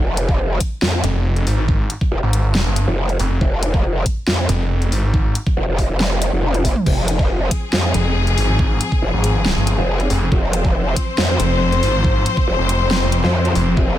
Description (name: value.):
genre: heavy wobble dubstep.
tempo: 139 BPM.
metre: 4/4.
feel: half-time.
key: F minor.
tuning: A4 = 440 Hz.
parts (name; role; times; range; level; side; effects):
growl bass; bass; 0.0-14.0 s; F1 to F2; -18 LUFS; equal; chorus, overdrive.
dubstep drum kit; drums; 0.2-13.6 s; crash cymbal, hi-hat, snare drum, toms; -23 LUFS; equal; overdrive, studio reverb.
electronic kick drum; drums; 0.3-13.9 s; none; -18 LUFS; equal; overdrive, studio reverb.
snarling distorted saw bass; bass; 1.0-5.3, 7.9-13.8 s; F1 to Ab1; -17 LUFS; equal; distortion, overdrive.
clear symphonic string section; sustained chords; 6.9-14.0 s; F3 to C5; -21 LUFS; left 3 dB; sidechain pumping.
room: light reverb, digital ambience.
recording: none.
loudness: -15 LUFS.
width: side -12 dB against mid.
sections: 0.0-14.0 A section.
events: drum fill 6.4-6.9.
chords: 0.0 Fm.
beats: 0.39 0.82 1.25 | 1.68 2.12 2.55 2.98 | 3.41 3.84 4.27 4.71 | 5.14 5.57 6.00 6.43 | 6.86 7.30 7.73 8.16 | 8.59 9.02 9.45 9.89 | 10.32 10.75 11.18 11.61 | 12.04 12.48 12.91 13.34 | 13.77.